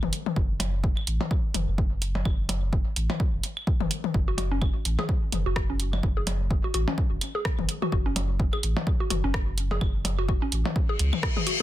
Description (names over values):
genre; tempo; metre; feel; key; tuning
minimal techno; 127 BPM; 4/4; swing 57% on 16ths; F# minor; A4 = 440 Hz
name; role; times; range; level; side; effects
saturated sub bass; bass; 0.0-11.1 s; F#1 to C#2; -28 LUFS; equal; sidechain pumping
electronic toms, percussion blips and claves; percussion; 0.0-11.4 s; none; -32 LUFS; left 4 dB; tape echo
punchy analog drum machine; drums; 0.1-11.6 s; hi-hat, rim click; -30 LUFS; right 2 dB; soft clipping on snare
electronic kick drum; drums; 0.4-11.3 s; none; -26 LUFS; equal; none
mallet-like synth pluck; riff; 4.3-11.5 s; C#4 to G#4; -33 LUFS; equal; chorus, sidechain pumping, tape echo
reverse cymbal; sound effects; 10.9-11.6 s; none; -29 LUFS; left 5 dB; none
room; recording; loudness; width
little or no reverb; dense, heavily limited modern master; -24 LUFS; side -14 dB against mid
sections
0.0-11.6 A section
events
reverse cymbal 10.9-11.6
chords
0.0 F#5